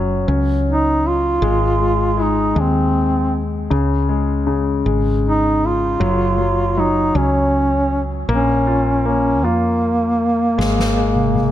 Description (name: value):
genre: six-eight pop ballad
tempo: 52 BPM (dotted quarters)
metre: 6/8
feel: straight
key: Db major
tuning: A4 = 440 Hz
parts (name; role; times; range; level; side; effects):
- clear concert grand piano; accompaniment; 0.0-11.5 s; Db3 to F4; -21 LUFS; left 4 dB; none
- woody fretless electric bass; bass; 0.0-11.5 s; Gb1 to F2; -20 LUFS; equal; none
- mellow duduk; melody; 0.7-11.5 s; Bb3 to F4; -18 LUFS; right 1 dB; none
- soft-mallet drum kit; drums; 10.6-11.5 s; snare drum, toms; -20 LUFS; equal; none
room: light reverb, small room ambience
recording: none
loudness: -15 LUFS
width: side -12 dB against mid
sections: 0.0-11.5 A section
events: drum fill 10.6-11.5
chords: 0.0 Gb5; 1.4 Ab; 3.7 Db5; 6.0 Gb5; 8.3 Bbm; 10.6 Absus2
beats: 0.28 | 1.42 2.56 | 3.71 4.87 | 6.01 7.15 | 8.29 9.44 | 10.58